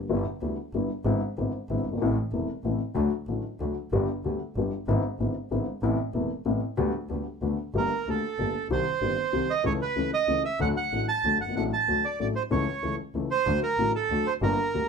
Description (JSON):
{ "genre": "tango", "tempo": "189 BPM", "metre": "3/4", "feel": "rubato", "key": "G major", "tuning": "A4 = 437 Hz", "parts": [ { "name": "dark upright piano", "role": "accompaniment", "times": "0.0-14.9 s", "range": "E1 to A4", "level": "-28 LUFS", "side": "left 4 dB", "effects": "none" }, { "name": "clear double bass", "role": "bass", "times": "0.0-14.9 s", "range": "E1 to D2", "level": "-31 LUFS", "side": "right 1 dB", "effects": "none" }, { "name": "bandoneon", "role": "melody", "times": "7.8-14.9 s", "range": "A4 to A5", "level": "-26 LUFS", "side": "right 6 dB", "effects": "none" } ], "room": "moderate studio ambience, RT60 0.5 s", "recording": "none", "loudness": "-25 LUFS", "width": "side -6 dB against mid", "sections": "0.1-7.7 A section; 7.7-14.9 B section", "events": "none", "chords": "0.1 G6; 1.1 E7/G#; 2.0 Am; 3.0 D; 3.9 G; 4.9 E7/G#; 5.8 Amadd9; 6.8 G/D; 7.4 D6; 7.7 Gmadd9; 8.7 Cm; 9.6 A/C#; 10.6 D; 12.5 A/C#; 13.5 D" }